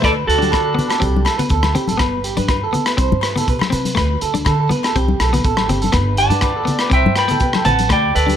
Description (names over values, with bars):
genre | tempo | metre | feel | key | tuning
highlife guitar band | 122 BPM | 4/4 | swing 53% on 16ths | unclear | A4 = 440 Hz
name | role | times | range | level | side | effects
clean electric guitar | melody | 0.0-1.2, 6.2-8.4 s | F#4 to B5 | -18 LUFS | right 2 dB | slapback echo
breathy trumpet | second line | 0.0-1.2, 6.2-8.4 s | D4 to G5 | -26 LUFS | left 4 dB | none
clean electric guitar | accompaniment | 0.0-8.4 s | A3 to D4 | -24 LUFS | left 5 dB | none
electric guitar at the edge of break-up | arpeggios | 0.0-8.4 s | G4 to C5 | -22 LUFS | right 7 dB | slapback echo
upright bass | bass | 0.0-8.4 s | G1 to D3 | -20 LUFS | equal | none
crunchy breakbeat drum kit | drums | 0.0-8.4 s | hi-hat, kick drum, rim click | -21 LUFS | equal | none
agogo bells | percussion | 0.0-8.0 s | none | -26 LUFS | left 10 dB | none
congas | percussion | 0.4-8.4 s | none | -22 LUFS | left 4 dB | none
room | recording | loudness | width
light reverb, studio reverb | none | -14 LUFS | side -9 dB against mid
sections
0.0-8.4 A section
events
none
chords
0.0 Dsus4; 2.0 G; 3.0 C5; 4.0 Dsus4; 5.9 G; 6.9 C